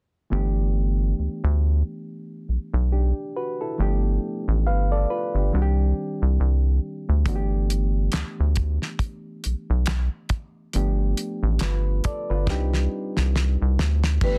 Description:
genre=R&B, neo-soul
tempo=69 BPM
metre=4/4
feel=swing 57% on 16ths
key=G major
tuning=A4 = 440 Hz
part: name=bright reed electric piano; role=accompaniment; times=0.3-14.4 s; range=Eb3 to F5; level=-32 LUFS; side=equal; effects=plate reverb
part: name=rubbery square bass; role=bass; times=0.3-14.4 s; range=G1 to D2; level=-23 LUFS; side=equal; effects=none
part: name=damped 70s drum kit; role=drums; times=7.3-14.4 s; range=crash cymbal, handclaps, hi-hat, kick drum, snare drum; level=-29 LUFS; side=equal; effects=soft clipping on snare
part: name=vibraphone with medium mallets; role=melody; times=14.2-14.4 s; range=B4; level=-26 LUFS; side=equal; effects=plate reverb
room=little or no reverb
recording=dense, heavily limited modern master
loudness=-24 LUFS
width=mono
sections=0.3-14.2 A section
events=drum fill 12.5-14.2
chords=0.3 G69; 3.8 G7; 5.5 Cmadd9; 7.3 G69; 10.7 G7; 12.5 Cmadd9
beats=| 0.30 1.17 2.04 2.91 | 3.78 4.65 5.52 6.39 | 7.26 8.13 9.00 9.87 | 10.74 11.61 12.48 13.35 | 14.21

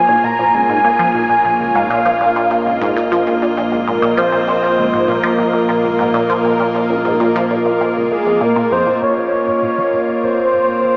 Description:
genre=ambient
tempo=99 BPM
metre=4/4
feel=straight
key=Bb minor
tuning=A4 = 440 Hz
part: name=breathy flute-like synth lead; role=melody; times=0.0-11.0 s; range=Ab4 to Bb5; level=-15 LUFS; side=equal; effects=ensemble chorus, tape echo
part: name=evolving wavetable pad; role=sustained chords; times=0.0-11.0 s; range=Bb3 to Eb5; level=-18 LUFS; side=equal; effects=chorus, built-in reverb
part: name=analog drone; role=bass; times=1.0-11.0 s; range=Bb1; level=-30 LUFS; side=equal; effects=chorus
part: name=resonant blip pluck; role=riff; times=0.1-10.9 s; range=Db2 to F3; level=-20 LUFS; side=equal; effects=phaser, tape echo
room=wet spring reverb, RT60 2.5 s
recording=echo-heavy mix, cassette tape, small speaker sound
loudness=-12 LUFS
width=side -36 dB against mid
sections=0.0-9.0 A section; 9.0-11.0 B section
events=filter sweep on synth arpeggio sound 9.0-11.0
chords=0.0 Bbm7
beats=0.54 1.15 | 1.75 2.36 2.96 3.57 | 4.18 4.78 5.39 6.00 | 6.60 7.21 7.81 8.42 | 9.03 9.63 10.24 10.84

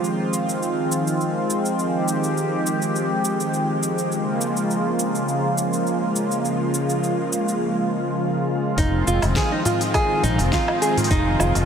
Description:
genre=organic downtempo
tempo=103 BPM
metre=4/4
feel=swing 53% on 16ths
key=F minor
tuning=A4 = 440 Hz
part: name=warm analog pad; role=sustained chords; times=0.0-11.7 s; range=Db3 to G4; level=-21 LUFS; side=equal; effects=chorus, sidechain pumping, shimmer reverb
part: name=deep house drum kit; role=drums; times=0.0-11.7 s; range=cabasa, hi-hat, snare drum, woodblock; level=-30 LUFS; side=equal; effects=overdrive
part: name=nylon-string guitar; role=arpeggios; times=8.8-11.5 s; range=Eb4 to Ab4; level=-22 LUFS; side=right 1 dB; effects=vintage 12-bit sampler grit, tape echo, shimmer reverb
part: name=mellow fretless electric bass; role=bass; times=8.8-11.7 s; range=F1 to Bb1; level=-21 LUFS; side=equal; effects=sidechain pumping
part: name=electronic kick drum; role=drums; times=8.8-11.2 s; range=none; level=-24 LUFS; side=equal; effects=none
part: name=darbuka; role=percussion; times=9.2-11.7 s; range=none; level=-30 LUFS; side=equal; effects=none
room=wet huge ambient reverb, RT60 8.3 s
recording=dreamy mix soaked in reverb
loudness=-19 LUFS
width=side -7 dB against mid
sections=0.0-8.8 A section; 8.8-11.7 B section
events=none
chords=0.0 Fm7; 4.1 Bbm7; 8.8 Fm7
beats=0.04 0.62 1.20 | 1.79 2.37 2.95 3.53 | 4.12 4.70 5.28 5.86 | 6.45 7.03 7.61 8.19 | 8.78 9.36 9.94 10.53 | 11.11

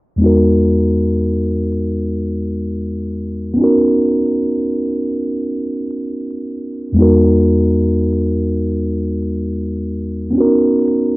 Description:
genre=hip hop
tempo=free time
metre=none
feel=none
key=unclear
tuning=A4 = 439 Hz
part: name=mellow tine electric piano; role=accompaniment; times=0.2-11.2 s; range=E2 to A#4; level=-14 LUFS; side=equal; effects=low-pass filter
room=moderate small room reverb, RT60 0.5 s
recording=rough home demo mix, vinyl crackle, low-pass filter, nothing above 7.7 kHz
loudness=-14 LUFS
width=side -20 dB against mid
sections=0.2-11.2 A section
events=filter sweep 0.2-11.2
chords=0.2 Emaj9#11; 3.6 Bmaj9; 7.0 Emaj9#11; 10.3 Bmaj9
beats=free time

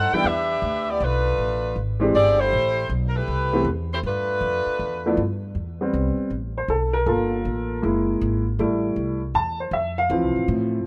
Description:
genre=jazz, big band swing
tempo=158 BPM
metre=4/4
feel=swing 66% on 8ths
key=A minor from 5.6 s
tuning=A4 = 445 Hz
part: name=warm saxophone section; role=melody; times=0.0-5.2 s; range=A3 to G5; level=-24 LUFS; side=equal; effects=none
part: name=upright bass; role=bass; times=0.0-10.8 s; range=F#1 to A2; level=-29 LUFS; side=equal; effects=none
part: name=clear upright piano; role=accompaniment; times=0.1-10.8 s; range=E3 to A5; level=-25 LUFS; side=equal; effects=none
room=small room ambience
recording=rough home demo mix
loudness=-23 LUFS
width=mono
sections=0.0-5.6 A section; 5.6-10.9 B section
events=upright piano solo 5.6-10.9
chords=0.0 Em7; 1.0 Bm7b5; 1.8 E7alt; 2.5 Am7; 4.0 G13; 5.6 Am9; 7.1 Gm7; 7.8 F#9; 8.6 Fmaj9; 10.1 Dm7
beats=0.26 0.64 | 1.02 1.40 1.77 2.15 | 2.53 2.91 3.29 3.67 | 4.04 4.42 4.80 5.18 | 5.56 5.94 6.32 6.69 | 7.07 7.45 7.83 8.21 | 8.59 8.97 9.35 9.73 | 10.11 10.48

